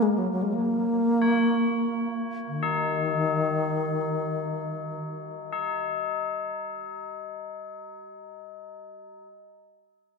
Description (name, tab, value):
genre	world meditative, free-time meditation music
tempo	free time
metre	none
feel	none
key	unclear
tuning	A4 = 440 Hz
part	bass flute	melody	0.0-5.0 s	Eb3 to Bb3	-25 LUFS	left 1 dB	tape echo
part	tubular bells	texture	1.2-9.3 s	Eb4 to Db5	-30 LUFS	left 5 dB	none
room	wet church reverb, RT60 2.5 s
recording	dark, warm production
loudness	-25 LUFS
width	side -4 dB against mid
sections	0.0-5.5 A section; 5.5-10.2 B section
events	none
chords	none